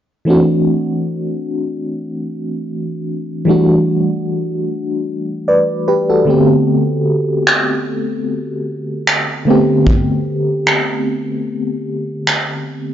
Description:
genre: contemporary R&B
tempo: 75 BPM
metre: 4/4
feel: swing 54% on 16ths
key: unclear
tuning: A4 = 440 Hz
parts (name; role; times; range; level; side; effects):
- FM electric piano with tremolo; accompaniment; 0.3-12.9 s; D3 to D5; -15 LUFS; equal; phaser
- soft brush drum kit; drums; 7.5-12.5 s; finger snaps, kick drum; -15 LUFS; right 1 dB; vintage 12-bit sampler grit
room: light reverb, small room reverb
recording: transformer saturation, nothing above 7.5 kHz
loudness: -14 LUFS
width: side -10 dB against mid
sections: 0.3-12.9 A section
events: break 11.5-12.9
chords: 0.3 D9; 3.5 Em11; 6.3 Am11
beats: | 0.27 1.07 1.87 2.67 | 3.47 4.27 5.07 5.87 | 6.67 7.47 8.27 9.07 | 9.87 10.67 11.47 12.27

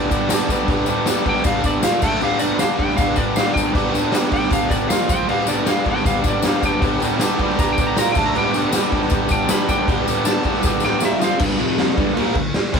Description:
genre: garage rock duo or trio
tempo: 157 BPM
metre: 4/4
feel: straight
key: G major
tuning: A4 = 442 Hz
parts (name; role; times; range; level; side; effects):
- electric slide guitar; melody; 0.0-11.4 s; D5 to B5; -24 LUFS; left 2 dB; none
- crunchy overdriven guitar; riff; 0.0-12.8 s; F2 to C5; -19 LUFS; right 1 dB; none
- raw garage drum kit; drums; 0.1-12.8 s; crash cymbal, kick drum, snare drum; -20 LUFS; equal; none
- tambourine; percussion; 0.1-11.3 s; none; -31 LUFS; left 8 dB; none
room: moderate studio reverb, RT60 0.6 s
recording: band playing live in one room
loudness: -16 LUFS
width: side -6 dB against mid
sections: 0.0-11.4 A section; 11.4-12.8 B section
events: electric slide guitar solo 0.0-11.4; drum fill 10.6-11.4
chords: 0.0 G; 1.8 Bb5; 2.0 D5; 2.2 G; 4.9 Bb5; 5.1 F5; 5.3 G; 8.0 Bb5; 8.2 D5; 8.3 G; 11.0 Bb5; 11.2 F5; 11.4 G5; 11.6 F5; 12.0 G5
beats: 0.30 | 0.68 1.07 1.45 1.83 | 2.22 2.60 2.98 3.37 | 3.75 4.13 4.52 4.90 | 5.28 5.67 6.05 6.43 | 6.81 7.20 7.58 7.96 | 8.35 8.73 9.11 9.49 | 9.88 10.26 10.64 11.02 | 11.40 11.78 12.17 12.55

